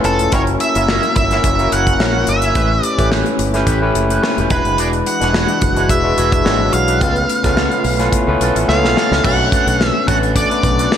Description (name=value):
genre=polished 1980s jazz-funk pop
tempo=108 BPM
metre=4/4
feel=swing 54% on 16ths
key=B minor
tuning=A4 = 440 Hz
part: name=overdriven tine electric piano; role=accompaniment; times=0.0-11.0 s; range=G#3 to A5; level=-18 LUFS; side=left 2 dB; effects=lush chorus
part: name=dark studio string section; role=sustained chords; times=0.0-11.0 s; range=C#3 to A#4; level=-27 LUFS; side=right 2 dB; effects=none
part: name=electric guitar with an envelope filter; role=riff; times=0.0-10.9 s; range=B3 to C#5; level=-26 LUFS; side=right 4 dB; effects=lush chorus
part: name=fingered electric bass with an envelope filter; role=bass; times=0.0-10.9 s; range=E1 to C#2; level=-20 LUFS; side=right 1 dB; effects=none
part: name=modern studio drum kit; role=drums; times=0.0-11.0 s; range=crash cymbal, hi-hat, kick drum, snare drum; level=-19 LUFS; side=equal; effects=gated reverb
part: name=octave-fuzz lead guitar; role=melody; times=0.1-11.0 s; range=A4 to F#5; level=-18 LUFS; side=right 2 dB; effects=distortion
room=light reverb, small room reverb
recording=none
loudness=-12 LUFS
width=side -9 dB against mid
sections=0.0-9.2 A section; 9.2-11.0 B section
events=tine electric piano fill 8.1-9.2; drum fill 8.7-9.2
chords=0.3 F#7; 2.6 A9; 4.5 E9; 7.0 C#7alt; 9.2 Bm7